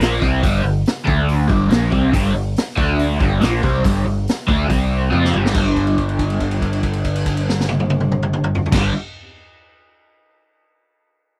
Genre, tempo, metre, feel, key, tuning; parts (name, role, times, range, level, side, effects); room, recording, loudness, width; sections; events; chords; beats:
blues rock power trio and southern rock; 140 BPM; 4/4; straight; G minor; A4 = 440 Hz
crunchy overdriven guitar; riff; 0.0-8.9 s; G2 to F4; -21 LUFS; equal; phaser
growling picked electric bass; bass; 0.0-8.9 s; G1 to F2; -23 LUFS; equal; overdrive
raw garage drum kit; drums; 0.0-8.8 s; crash cymbal, hi-hat, kick drum, snare drum, toms; -23 LUFS; equal
little or no reverb; dry, close 1970s-style studio recording; -18 LUFS; mono
0.0-5.6 A section; 5.6-9.0 B section
drum fill 5.1-5.6; held note 5.6-8.7
0.0 Gm; 1.1 D5; 1.5 Gm; 2.8 D5; 3.2 Gm; 4.7 C5; 5.1 G5
0.00 | 0.43 0.86 1.28 1.71 | 2.14 2.57 2.99 3.42 | 3.85 4.28 4.70 5.13 | 5.56 5.99 6.41 6.84 | 7.26 7.69 8.12 8.54